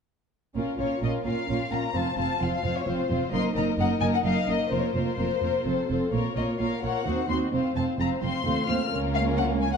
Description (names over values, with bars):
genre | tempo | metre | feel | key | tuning
quick classical-period movement for string orchestra | 130 BPM | 3/4 | straight | Bb minor | A4 = 440 Hz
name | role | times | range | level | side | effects
warm studio violin section | second line | 0.6-9.8 s | F4 to Eb5 | -31 LUFS | left 4 dB | none
warm studio viola section | accompaniment | 0.6-9.8 s | A3 to F4 | -29 LUFS | right 2 dB | none
dark studio cello section | bass | 0.6-9.8 s | Db2 to Bb2 | -31 LUFS | right 3 dB | none
warm studio double bass section | bass | 0.6-9.8 s | F1 to Eb2 | -32 LUFS | right 4 dB | none
rich studio violin section | melody | 0.8-9.8 s | C5 to F6 | -30 LUFS | left 7 dB | none
room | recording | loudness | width
wet recital hall reverb, RT60 1.6 s | dark, warm production | -24 LUFS | side -6 dB against mid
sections
0.6-9.8 A section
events
none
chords
0.6 Bbm; 1.9 F5; 3.3 Ebm/Gb; 4.7 Fsus4; 5.7 F; 6.1 Bbm; 7.1 Cdim/Eb; 7.5 F5; 8.5 F7/Eb; 8.9 Bbm/Db